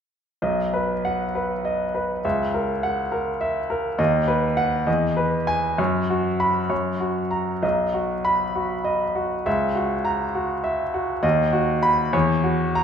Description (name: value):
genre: classical, virtuoso piano study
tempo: 64-69 BPM (dotted quarters)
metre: 6/8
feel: rubato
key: B major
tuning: A4 = 439 Hz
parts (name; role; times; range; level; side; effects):
- clear baby grand piano; solo; 0.4-12.8 s; B1 to B5; -20 LUFS; equal; none
room: wet recital hall reverb, RT60 1.6 s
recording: recorded in a church or concert hall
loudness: -20 LUFS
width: side -8 dB against mid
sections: 0.4-12.8 A section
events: none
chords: 0.4 B; 2.2 F#7/C#; 4.0 B/D#; 4.9 Emaj7; 5.8 F#sus4; 6.7 F#; 7.6 B; 9.5 F#7/C#; 11.2 B/D#; 12.1 F#7(no3)/E